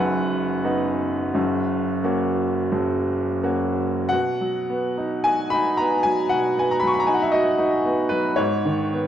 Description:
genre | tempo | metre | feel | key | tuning
classical, romantic nocturne for solo piano | 40-61 BPM | 4/4 | rubato | B major | A4 = 440 Hz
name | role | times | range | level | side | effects
clear upright piano | solo | 0.0-9.1 s | F#1 to C#6 | -20 LUFS | equal | none
room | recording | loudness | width
moderate scoring stage reverb, RT60 1.9 s | none | -20 LUFS | side -10 dB against mid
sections
0.0-4.1 A section; 4.1-9.1 B section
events
none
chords
0.0 B/F#; 1.4 F#; 4.1 B; 8.4 G#m

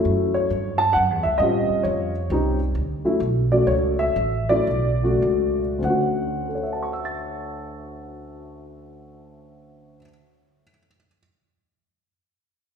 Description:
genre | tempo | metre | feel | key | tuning
jazz | 94-134 BPM | 3/4 | swing 66% on 8ths | D major | A4 = 440 Hz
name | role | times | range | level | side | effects
dark upright piano | melody | 0.0-11.2 s | D2 to A6 | -21 LUFS | left 1 dB | none
upright bass | bass | 0.0-10.0 s | A1 to A2 | -26 LUFS | right 1 dB | none
room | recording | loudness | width
wet recital hall reverb, RT60 1.7 s | recorded in a church or concert hall | -20 LUFS | side -7 dB against mid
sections
0.0-5.8 A section; 5.8-9.7 B section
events
slowing down 2.8-5.8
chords
0.1 F#m7; 1.4 A7alt; 2.8 Dmaj7

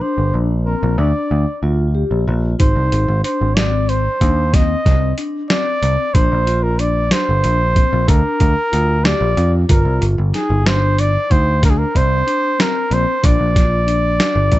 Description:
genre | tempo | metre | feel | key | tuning
progressive instrumental, band music in an uneven meter | 186 BPM (eighths) | 11/8 | straight | unclear | A4 = 440 Hz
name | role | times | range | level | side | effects
breathy trumpet | melody | 0.0-14.6 s | Ab4 to Eb5 | -19 LUFS | equal | none
vibraphone with soft mallets | arpeggios | 0.0-14.6 s | C4 to G4 | -23 LUFS | left 3 dB | ping-pong delay
picked electric bass | bass | 0.2-14.6 s | G1 to F2 | -16 LUFS | equal | none
boom bap sampler-style drum kit | drums | 2.6-14.6 s | hi-hat, kick drum, snare drum | -16 LUFS | equal | none
room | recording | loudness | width
little or no reverb | dark, warm production, nothing above 8.0 kHz | -13 LUFS | side -16 dB against mid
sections
0.0-14.6 A section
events
none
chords
0.0 Bb; 2.6 Ab; 6.2 Bb; 9.7 Gm; 13.2 Bb

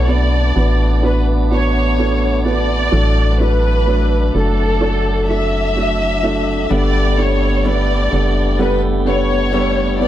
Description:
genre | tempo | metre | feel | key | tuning
pop | 64 BPM | 4/4 | straight | D major | A4 = 440 Hz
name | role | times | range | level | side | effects
warm studio violin section | melody | 0.0-10.1 s | A4 to E5 | -20 LUFS | left 1 dB | none
felt-muted upright piano | accompaniment | 0.0-10.1 s | A2 to B4 | -19 LUFS | right 4 dB | none
tonewheel organ | sustained chords | 0.0-10.1 s | F#3 to D4 | -26 LUFS | left 3 dB | overdrive, wide subtle chorus
organ-like FM bass | bass | 0.0-10.1 s | F#1 to B1 | -17 LUFS | equal | none
nylon-string guitar | arpeggios | 6.7-10.1 s | G3 to A4 | -25 LUFS | left 8 dB | ping-pong delay
room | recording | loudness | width
small room reverb | dark, warm production | -13 LUFS | side -12 dB against mid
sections
0.0-10.1 A section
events
none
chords
0.0 Bm7; 2.9 D; 6.7 Gadd9

